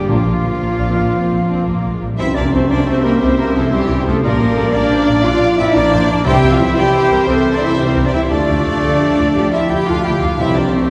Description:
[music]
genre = cinematic, heroic adventure film score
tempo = 117 BPM (dotted quarters)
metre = 12/8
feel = straight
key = C mixolydian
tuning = A4 = 438 Hz
[part]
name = rich symphonic violin section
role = melody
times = 0.0-10.9 s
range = F4 to G5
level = -28 LUFS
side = equal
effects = none
[part]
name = clear clarinet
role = second line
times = 0.0-2.0 s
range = F4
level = -31 LUFS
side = equal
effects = none
[part]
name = mellow cor anglais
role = second line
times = 0.0-10.9 s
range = E3 to D5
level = -28 LUFS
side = equal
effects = none
[part]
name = silver concert flute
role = second line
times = 0.0-10.9 s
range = G4 to G5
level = -28 LUFS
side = equal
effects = none
[part]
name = dark trombone section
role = sustained chords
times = 0.0-10.9 s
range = Bb2 to C4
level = -27 LUFS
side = equal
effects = none
[part]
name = mellow French horn section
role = sustained chords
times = 0.0-10.9 s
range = G3 to G4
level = -21 LUFS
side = equal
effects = none
[part]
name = concert harp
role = arpeggios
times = 0.0-10.9 s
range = G2 to Bb5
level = -28 LUFS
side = equal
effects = none
[part]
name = rich symphonic cello section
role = bass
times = 0.0-10.9 s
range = F3 to G4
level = -23 LUFS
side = equal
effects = none
[part]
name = warm symphonic violin section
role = second line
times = 0.1-10.9 s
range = Bb3 to G5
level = -30 LUFS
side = equal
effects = none
[part]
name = rich symphonic viola section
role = accompaniment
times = 0.1-10.9 s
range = G3 to E5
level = -28 LUFS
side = equal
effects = none
[part]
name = bright trumpet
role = stabs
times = 0.1-10.9 s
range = F4 to D5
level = -27 LUFS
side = equal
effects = none
[part]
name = rich symphonic double bass section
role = bass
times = 0.1-10.9 s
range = Bb1 to D2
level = -23 LUFS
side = equal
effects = none
[part]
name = timpani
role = percussion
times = 0.1-0.6, 6.3-6.7, 10.4-10.9 s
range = Bb2 to C3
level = -22 LUFS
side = equal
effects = none
[part]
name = tam-tam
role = percussion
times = 2.2-3.5 s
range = none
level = -27 LUFS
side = equal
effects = none
[sound]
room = wet scoring stage reverb, RT60 1.7 s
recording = heard from further back in the room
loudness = -15 LUFS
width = mono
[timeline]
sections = 0.0-2.2 A section; 2.2-10.9 B section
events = band accent 2.2-2.5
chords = 0.1 Bb; 2.2 C; 4.2 Bb; 6.3 C; 8.3 Dm; 10.4 C

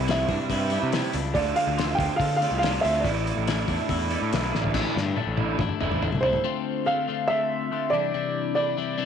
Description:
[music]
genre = indie rock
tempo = 141 BPM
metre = 4/4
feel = straight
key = D minor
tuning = A4 = 439 Hz
[part]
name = dark upright piano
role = melody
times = 0.0-9.1 s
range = C5 to G5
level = -26 LUFS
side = right 2 dB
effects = slapback echo
[part]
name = raw garage guitar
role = riff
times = 0.0-6.3 s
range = A2 to F4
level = -30 LUFS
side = right 14 dB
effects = overdrive, ensemble chorus, slapback echo
[part]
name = twelve-string electric guitar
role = riff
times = 0.0-9.1 s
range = A2 to F4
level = -30 LUFS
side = left 11 dB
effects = phaser
[part]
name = fuzz picked electric bass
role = bass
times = 0.0-6.3 s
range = G1 to D3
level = -28 LUFS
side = equal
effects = overdrive
[part]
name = cloth-damped thuddy drum kit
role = drums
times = 0.1-6.4 s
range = crash cymbal, hi-hat, kick drum, snare drum, toms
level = -30 LUFS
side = left 5 dB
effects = none
[sound]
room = light reverb, studio ambience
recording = 1960s-style stereo with parts hard left and right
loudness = -22 LUFS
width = side -8 dB against mid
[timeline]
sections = 0.0-4.8 A section; 4.8-6.4 B section; 6.4-9.1 C section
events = drum fill 4.5, 4.8-6.4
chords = 0.0 Cadd9; 1.4 Dm7; 3.1 Asus4; 6.4 Dm7; 7.9 Cadd9

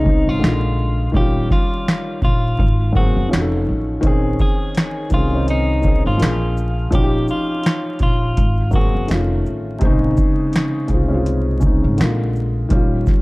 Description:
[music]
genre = lo-fi hip hop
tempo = 83 BPM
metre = 4/4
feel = swing 57% on 16ths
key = Bb minor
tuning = A4 = 439 Hz
[part]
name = clean electric guitar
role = melody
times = 0.0-9.1 s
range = Eb4 to Ab4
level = -25 LUFS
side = left 1 dB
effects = low-pass filter
[part]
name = felt-muted upright piano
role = accompaniment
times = 0.0-13.2 s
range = C3 to A4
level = -20 LUFS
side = left 1 dB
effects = low-pass filter
[part]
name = upright bass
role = bass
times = 0.0-13.0 s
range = F1 to C2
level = -20 LUFS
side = equal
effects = none
[part]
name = booming analog drum machine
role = drums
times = 0.1-13.2 s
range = hi-hat, kick drum, shaker, snare drum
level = -18 LUFS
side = equal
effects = none
[sound]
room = light reverb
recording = dark, warm production, vinyl crackle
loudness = -15 LUFS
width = side -22 dB against mid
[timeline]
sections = 0.0-13.2 A section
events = break 0.0-4.0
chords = 0.4 Bb7; 1.1 Eb9/Bb; 2.6 Ab9; 3.3 F7b13; 4.0 Bbm11; 6.2 Bb7; 6.9 Eb9/Bb; 8.4 Ab9; 9.1 F7b13; 9.8 Bbm11; 12.0 Bb7; 12.7 Eb9/Bb

